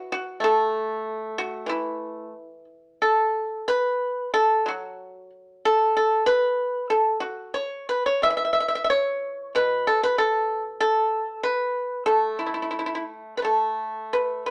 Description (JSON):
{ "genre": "chinese traditional, Chinese solo plucked strings", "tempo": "85-98 BPM", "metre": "2/4", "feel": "rubato", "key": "E zhi mode", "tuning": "A4 = 439 Hz", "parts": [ { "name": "pipa", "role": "solo", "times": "0.0-14.5 s", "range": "B2 to E5", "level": "-24 LUFS", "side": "equal", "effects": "none" } ], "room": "moderate studio reverb, RT60 0.7 s", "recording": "none", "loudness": "-24 LUFS", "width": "mono", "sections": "0.0-3.0 A section; 3.0-13.4 B section; 13.4-14.5 B section", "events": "none", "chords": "none" }